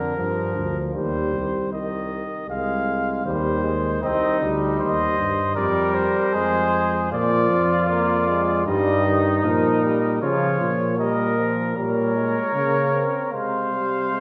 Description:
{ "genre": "classical, imitative canzona for brass ensemble", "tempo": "77 BPM", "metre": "4/4", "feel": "straight", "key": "unclear", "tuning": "A4 = 440 Hz", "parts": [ { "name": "mellow trumpet", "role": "melody", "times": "0.0-14.2 s", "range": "Bb4 to F5", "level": "-28 LUFS", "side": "equal", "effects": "none" }, { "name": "clear trombone", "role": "accompaniment", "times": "0.0-14.2 s", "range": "D3 to C4", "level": "-28 LUFS", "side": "equal", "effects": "none" }, { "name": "mellow bass trombone", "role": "bass", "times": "0.0-14.2 s", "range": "C2 to Db3", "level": "-27 LUFS", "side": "equal", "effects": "none" }, { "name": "warm flugelhorn", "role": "second line", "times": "4.0-14.2 s", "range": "Eb4 to C5", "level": "-27 LUFS", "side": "equal", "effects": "none" } ], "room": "wet recital hall reverb, RT60 1.4 s", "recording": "recorded in a church or concert hall", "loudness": "-22 LUFS", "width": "mono", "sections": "0.0-14.2 A section", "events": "none", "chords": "0.0 Gm; 1.0 Cm; 2.5 Fm/C; 4.0 Cm; 5.6 Fm; 7.1 Bb; 8.7 Eb/G; 10.2 Bbm; 11.8 Gdim/Bb; 13.3 Fm/C", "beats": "0.17 | 0.95 1.72 2.49 3.26 | 4.03 4.80 5.57 6.34 | 7.12 7.89 8.66 9.44 | 10.22 10.99 11.77 12.55 | 13.34 14.12" }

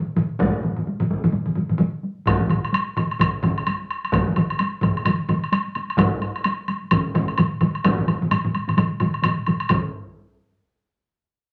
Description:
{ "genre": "japanese traditional, taiko drum ensemble", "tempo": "129 BPM", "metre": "4/4", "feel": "swing 60% on 16ths", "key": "none", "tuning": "none", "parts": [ { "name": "taiko ensemble", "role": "percussion", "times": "0.1-9.9 s", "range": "none", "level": "-30 LUFS", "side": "equal", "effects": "none" }, { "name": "solo taiko drums", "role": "percussion", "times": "0.2-10.1 s", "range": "none", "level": "-30 LUFS", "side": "equal", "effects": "none" }, { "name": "taiko ensemble", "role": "percussion", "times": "0.2-10.1 s", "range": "none", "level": "-25 LUFS", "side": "equal", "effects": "none" }, { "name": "taiko ensemble", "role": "percussion", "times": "0.4-9.9 s", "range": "none", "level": "-27 LUFS", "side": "equal", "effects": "none" }, { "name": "woodblock", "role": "percussion", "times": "2.3-9.9 s", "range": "none", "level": "-28 LUFS", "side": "equal", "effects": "none" } ], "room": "wet studio ambience, RT60 0.5 s", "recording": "none", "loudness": "-22 LUFS", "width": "mono", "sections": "0.0-9.7 A section; 9.7-11.5 B section", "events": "none", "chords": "none", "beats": "| 0.40 0.86 1.33 1.80 | 2.27 2.74 3.20 3.67 | 4.14 4.60 5.07 5.53 | 6.00 6.46 6.93 7.39 | 7.85 8.32 8.78 9.24 | 9.70" }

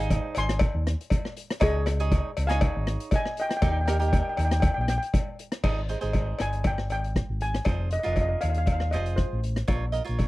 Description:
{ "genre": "calypso", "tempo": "119 BPM", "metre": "4/4", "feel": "swing 53% on 16ths", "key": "Ab major", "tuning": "A4 = 444 Hz", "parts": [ { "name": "steel pan", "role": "melody", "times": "0.0-9.5 s", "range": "Ab4 to C6", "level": "-30 LUFS", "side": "left 1 dB", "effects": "none" }, { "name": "cavaquinho", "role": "accompaniment", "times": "0.0-10.3 s", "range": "Eb4 to Eb5", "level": "-33 LUFS", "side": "right 5 dB", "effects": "none" }, { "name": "fingered electric bass", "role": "bass", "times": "0.0-10.3 s", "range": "F1 to Eb2", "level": "-27 LUFS", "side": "equal", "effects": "none" }, { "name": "street-band drum kit", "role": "drums", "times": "0.1-10.3 s", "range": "crash cymbal, hi-hat, kick drum, rim click", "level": "-27 LUFS", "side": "equal", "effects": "none" }, { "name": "cowbell", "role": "percussion", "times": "0.1-10.3 s", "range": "none", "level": "-34 LUFS", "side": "left 5 dB", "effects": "none" } ], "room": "little or no reverb", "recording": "dry, close 1970s-style studio recording", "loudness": "-24 LUFS", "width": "side -18 dB against mid", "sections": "0.0-5.6 A section; 5.6-10.3 B section", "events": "none", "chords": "0.0 Ab; 1.6 Dbsus2; 3.6 Eb; 5.6 Abmaj7; 7.7 Fm7; 9.7 Bbm", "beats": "0.10 0.61 1.11 | 1.61 2.12 2.62 3.12 | 3.63 4.13 4.63 5.14 | 5.64 6.15 6.65 7.16 | 7.67 8.17 8.68 9.18 | 9.69 10.20" }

